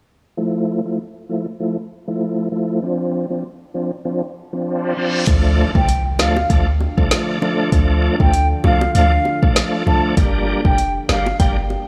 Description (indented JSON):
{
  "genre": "dancehall",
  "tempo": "98 BPM",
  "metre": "4/4",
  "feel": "swing 56% on 16ths",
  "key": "D minor",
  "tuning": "A4 = 440 Hz",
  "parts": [
    { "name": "bright tonewheel organ", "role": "accompaniment", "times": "0.4-11.6 s", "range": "F3 to E4", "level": "-23 LUFS", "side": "equal", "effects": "overdrive, chorus vibrato, fast rotary speaker, sidechain pumping" },
    { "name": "reverse cymbal and impact", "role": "sound effects", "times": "4.7-7.7 s", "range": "none", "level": "-32 LUFS", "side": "equal", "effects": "none" },
    { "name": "deep dark ambient pad", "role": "sustained chords", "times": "6.1-11.9 s", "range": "D3 to A4", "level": "-30 LUFS", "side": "equal", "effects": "chorus, built-in reverb, sidechain pumping" },
    { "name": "clean 808-style bass", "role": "bass", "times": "5.3-11.8 s", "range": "F1 to D2", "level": "-20 LUFS", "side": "equal", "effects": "none" },
    { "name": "afro-pop drum kit", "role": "drums", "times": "5.3-11.6 s", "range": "hi-hat, kick drum, snare drum", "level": "-19 LUFS", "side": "equal", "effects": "none" },
    { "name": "mellow concert flute", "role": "melody", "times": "5.8-11.4 s", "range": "F5 to A5", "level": "-24 LUFS", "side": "equal", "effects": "tape echo" },
    { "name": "bongos", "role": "percussion", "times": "6.2-11.9 s", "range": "none", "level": "-28 LUFS", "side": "equal", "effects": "none" },
    { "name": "soft synth bell", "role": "second line", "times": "11.4-11.9 s", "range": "G5", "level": "-28 LUFS", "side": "equal", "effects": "chorus, tape echo" }
  ],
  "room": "digital ambience",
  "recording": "low-pass filter, small room ambience",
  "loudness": "-18 LUFS",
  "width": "mono",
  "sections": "0.4-5.3 A section; 5.3-11.9 B section",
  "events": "filter sweep 0.4-5.3; reverse cymbal 4.8-5.3; impact 5.3-7.7",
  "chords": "0.4 Fmaj7; 2.8 Dm7; 5.3 Dm; 10.2 Gm"
}